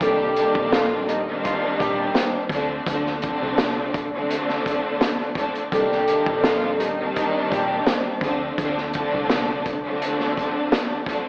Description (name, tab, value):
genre	hip hop, boom-bap hip-hop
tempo	84 BPM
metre	4/4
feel	swing 54% on 16ths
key	C dorian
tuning	A4 = 440 Hz
part	vibraphone with soft mallets	melody	0.0-8.2 s	G4 to C5	-25 LUFS	equal	high-pass filter, low-pass filter, tape echo
part	warm studio string section	accompaniment	0.0-11.3 s	D3 to D4	-23 LUFS	equal	cassette tape, high-pass filter, low-pass filter
part	warm horn section	stabs	0.0-8.0 s	Eb3 to G4	-27 LUFS	equal	high-pass filter, low-pass filter, tape echo
part	deep dub fingered electric bass	bass	0.0-10.9 s	Bb1 to D2	-35 LUFS	equal	tube saturation
part	crunchy breakbeat drum kit	drums	0.0-11.3 s	hi-hat, kick drum, snare drum	-25 LUFS	equal	none
room	moderate echo chamber reverb, RT60 2.1 s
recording	worn, warbling old tape, cassette tape, vinyl crackle, warbly pitch drift, AM radio sound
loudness	-20 LUFS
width	side -34 dB against mid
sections	0.0-11.3 A section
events	none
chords	0.0 Cm7; 2.5 Dm7; 5.7 Cm7; 8.2 Dm7